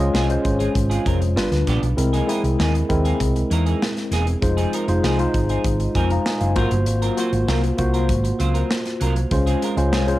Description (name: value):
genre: polished 1980s jazz-funk pop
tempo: 98 BPM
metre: 4/4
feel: straight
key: Db major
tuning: A4 = 438 Hz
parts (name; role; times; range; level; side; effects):
- tine electric piano; accompaniment; 0.0-10.2 s; G3 to Bb5; -22 LUFS; left 2 dB; slow stereo tremolo, analog chorus
- semi-hollow electric guitar; riff; 0.0-10.1 s; E3 to C5; -28 LUFS; right 5 dB; analog chorus
- hollow-body short-scale fingered electric bass; bass; 0.0-10.1 s; E1 to E2; -20 LUFS; equal; none
- modern studio drum kit; drums; 0.1-10.2 s; hi-hat, kick drum, snare drum; -26 LUFS; equal; cassette tape
room: light reverb, small room ambience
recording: home recording on cassette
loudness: -18 LUFS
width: side -16 dB against mid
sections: 0.0-10.2 A section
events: none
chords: 0.0 Dbmaj7; 1.4 G7; 2.0 C7alt; 4.4 Fm7; 6.6 Ab13; 9.3 Dbmaj7